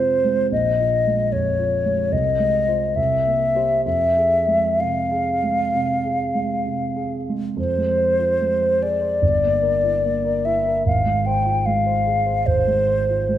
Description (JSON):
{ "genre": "classical, romantic duo for flute and grand piano", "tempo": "63-76 BPM", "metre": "4/4", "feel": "rubato", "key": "F minor", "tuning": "A4 = 441 Hz", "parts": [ { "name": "mellow hollow silver concert flute", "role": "melody", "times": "0.0-13.4 s", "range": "C5 to G5", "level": "-19 LUFS", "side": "left 1 dB", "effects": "none" }, { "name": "dark concert grand piano", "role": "accompaniment", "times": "0.0-13.4 s", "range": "G1 to C5", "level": "-23 LUFS", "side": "right 2 dB", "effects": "none" } ], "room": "moderate scoring stage reverb, RT60 1.5 s", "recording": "none", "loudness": "-18 LUFS", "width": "side -12 dB against mid", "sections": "0.0-7.6 A section; 7.6-13.4 B section", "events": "none", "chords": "0.0 Fm; 0.5 Bbm7; 2.1 Fm/C; 3.0 C7; 3.9 Fm; 9.2 Edim/G; 10.9 Fm/Ab" }